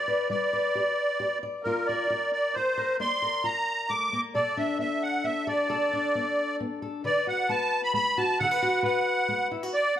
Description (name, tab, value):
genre	folk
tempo	133 BPM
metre	3/4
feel	straight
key	D major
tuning	A4 = 437 Hz
part	musette accordion	melody	0.0-10.0 s	Bb4 to D6	-25 LUFS	right 1 dB	none
part	fingerpicked steel-string acoustic guitar	accompaniment	0.0-9.7 s	B2 to D5	-31 LUFS	left 4 dB	none
room	moderate large studio reverb, RT60 0.8 s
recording	band playing live in one room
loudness	-24 LUFS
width	side -10 dB against mid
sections	0.0-7.1 A section; 7.1-10.0 B section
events	none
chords	0.0 G; 1.6 Bbadd9; 4.3 Bm7; 7.1 D6